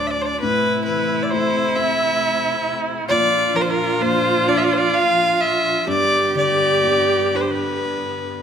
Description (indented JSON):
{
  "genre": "celtic folk, Celtic slow air",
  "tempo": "40-46 BPM (dotted quarters)",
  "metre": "6/8",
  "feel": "rubato",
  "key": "unclear",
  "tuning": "A4 = 437 Hz",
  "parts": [
    { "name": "warm fiddle", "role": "melody", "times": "0.0-8.4 s", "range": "Bb4 to F5", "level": "-19 LUFS", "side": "left 1 dB", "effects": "none" },
    { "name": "rich viola", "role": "second line", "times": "0.0-8.3 s", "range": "D4 to G4", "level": "-22 LUFS", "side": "right 3 dB", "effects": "none" },
    { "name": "felt-muted upright piano", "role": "accompaniment", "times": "0.0-8.4 s", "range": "D2 to D4", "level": "-26 LUFS", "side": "left 3 dB", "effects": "none" },
    { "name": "bright studio string section", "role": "sustained chords", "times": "0.0-8.4 s", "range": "D2 to D4", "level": "-29 LUFS", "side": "left 3 dB", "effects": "none" }
  ],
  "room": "moderate recital hall reverb, RT60 1.5 s",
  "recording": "minimal, uncompressed stereo recording",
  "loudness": "-16 LUFS",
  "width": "side -8 dB against mid",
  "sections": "0.0-8.4 A section",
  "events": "none",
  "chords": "0.4 Am; 3.1 Bb; 5.9 G"
}